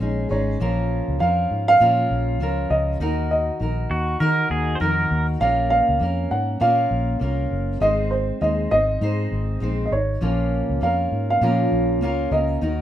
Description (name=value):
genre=acoustic pop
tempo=100 BPM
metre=4/4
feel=swing 60% on 16ths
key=Bb minor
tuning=A4 = 440 Hz
part: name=fingerpicked steel-string acoustic guitar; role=accompaniment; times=0.0-12.8 s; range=Bb2 to C5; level=-24 LUFS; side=equal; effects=none
part: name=vintage muted fingered electric bass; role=bass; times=0.0-12.8 s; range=Gb1 to Eb3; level=-24 LUFS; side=left 1 dB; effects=none
part: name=dark upright piano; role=melody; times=0.3-12.8 s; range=C5 to Gb5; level=-20 LUFS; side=right 1 dB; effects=none
part: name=pedal steel guitar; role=second line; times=3.9-5.3 s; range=Gb4 to C5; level=-23 LUFS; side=right 1 dB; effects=none
room=moderate studio reverb, RT60 0.6 s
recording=rough home demo mix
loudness=-19 LUFS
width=side -11 dB against mid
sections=0.6-12.8 A section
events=none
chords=0.0 Absus4; 0.6 Bbm; 3.0 Ebm; 5.4 Bbm; 7.8 Ab; 10.2 Bbm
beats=0.01 | 0.61 1.21 1.81 2.41 | 3.01 3.61 4.21 4.81 | 5.41 6.01 6.61 7.21 | 7.82 8.42 9.02 9.62 | 10.22 10.82 11.42 12.02 | 12.62